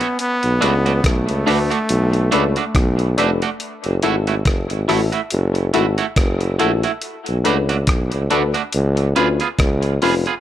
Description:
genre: dub reggae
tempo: 70 BPM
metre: 4/4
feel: swing 56% on 16ths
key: F# minor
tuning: A4 = 439 Hz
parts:
  - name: brilliant trombone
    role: melody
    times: 0.0-3.1 s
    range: A3 to B3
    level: -22 LUFS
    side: equal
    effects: dub echo
  - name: semi-hollow electric guitar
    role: accompaniment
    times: 0.0-10.3 s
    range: A3 to G#4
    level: -22 LUFS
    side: right 7 dB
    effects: high-pass filter, dub echo
  - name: dusty soul sampler-style drum kit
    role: drums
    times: 0.0-10.4 s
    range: hi-hat, kick drum, rim click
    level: -22 LUFS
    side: equal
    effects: dub echo
  - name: warm tuba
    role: bass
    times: 0.4-10.2 s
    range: E#1 to D2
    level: -19 LUFS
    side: equal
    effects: none
  - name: filtered dub chord stab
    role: stabs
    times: 0.6-10.3 s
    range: C#4 to B4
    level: -24 LUFS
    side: left 7 dB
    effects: chorus, high-pass filter, dub echo
room: light reverb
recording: none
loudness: -16 LUFS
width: side -12 dB against mid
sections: 0.0-10.4 A section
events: none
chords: 0.2 Bm7; 3.6 F#m7; 7.0 Bm7; 8.7 C#7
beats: | 0.19 1.04 1.90 2.75 | 3.61 4.46 5.32 6.17 | 7.03 7.88 8.74 9.59

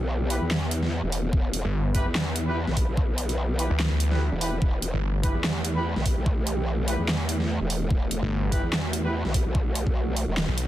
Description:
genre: heavy wobble dubstep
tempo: 146 BPM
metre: 4/4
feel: swing 55% on 16ths, half-time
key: E minor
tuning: A4 = 439 Hz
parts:
  - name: lush unison pad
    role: sustained chords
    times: 0.0-10.7 s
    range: E3 to B4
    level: -33 LUFS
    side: right 1 dB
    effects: chorus, sidechain pumping
  - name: growl bass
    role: bass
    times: 0.0-10.5 s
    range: E1 to E2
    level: -27 LUFS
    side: equal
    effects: chorus, overdrive
  - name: warm brass ensemble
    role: stabs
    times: 0.3-9.1 s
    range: E4 to B4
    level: -34 LUFS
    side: right 1 dB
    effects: tape echo
  - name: dubstep drum kit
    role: drums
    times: 0.3-10.7 s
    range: handclaps, hi-hat, snare drum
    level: -29 LUFS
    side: right 1 dB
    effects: overdrive
  - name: electronic kick drum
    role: drums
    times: 1.3-9.9 s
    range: none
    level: -24 LUFS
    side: equal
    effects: overdrive
  - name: snarling distorted saw bass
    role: bass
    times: 1.6-5.3, 8.2-10.7 s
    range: G1 to D2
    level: -25 LUFS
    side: equal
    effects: distortion, overdrive
room: digital ambience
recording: dense, heavily limited modern master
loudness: -23 LUFS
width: side -14 dB against mid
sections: 0.0-10.7 A section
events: kick drops out 10.4-10.7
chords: 0.0 Em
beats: 0.10 0.51 0.92 | 1.33 1.74 2.15 2.56 | 2.97 3.38 3.80 4.21 | 4.62 5.03 5.44 5.85 | 6.26 6.67 7.08 7.49 | 7.91 8.32 8.73 9.14 | 9.55 9.96 10.37

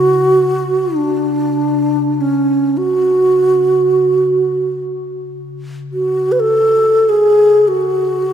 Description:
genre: world meditative, free-time meditation music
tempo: free time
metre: none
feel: none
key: F# minor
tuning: A4 = 440 Hz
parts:
  - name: breathy low xiao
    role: melody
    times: 0.0-8.3 s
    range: C#4 to B4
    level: -12 LUFS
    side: right 1 dB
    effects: tape echo
  - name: bronze singing bowl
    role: texture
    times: 0.0-6.0 s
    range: C#3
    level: -26 LUFS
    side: left 2 dB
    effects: stereo widening
room: wet church reverb, RT60 3.6 s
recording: none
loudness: -11 LUFS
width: side -9 dB against mid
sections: 0.0-8.3 A section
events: none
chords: none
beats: free time

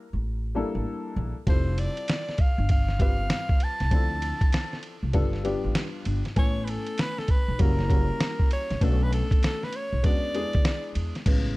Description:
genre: hip hop, jazz-hop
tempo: 98 BPM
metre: 4/4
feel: swing 64% on 16ths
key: unclear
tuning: A4 = 440 Hz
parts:
  - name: warm upright piano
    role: accompaniment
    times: 0.0-11.6 s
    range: C#3 to G#5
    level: -32 LUFS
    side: left 3 dB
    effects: none
  - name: upright bass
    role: bass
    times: 0.1-11.6 s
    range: F1 to E2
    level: -28 LUFS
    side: equal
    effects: none
  - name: clear soprano saxophone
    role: melody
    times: 1.5-10.9 s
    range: A4 to A5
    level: -32 LUFS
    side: equal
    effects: none
  - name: lo-fi sampler-style drum kit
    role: drums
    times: 1.5-11.4 s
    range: crash cymbal, hi-hat, kick drum, ride cymbal, snare drum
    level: -24 LUFS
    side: equal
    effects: none
room: studio ambience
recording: dark, warm production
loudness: -23 LUFS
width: side -20 dB against mid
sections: 0.0-11.3 A section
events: none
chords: 0.0 C13 (rootless); 1.5 Fmaj9; 3.9 Dm7; 5.1 G9; 6.4 Amaj7; 7.6 F#7b9; 8.8 Bm9; 10.0 E13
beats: 0.24 0.86 | 1.47 2.08 2.69 3.31 | 3.92 4.53 5.14 5.75 | 6.37 6.98 7.59 8.20 | 8.82 9.43 10.04 10.65 | 11.27

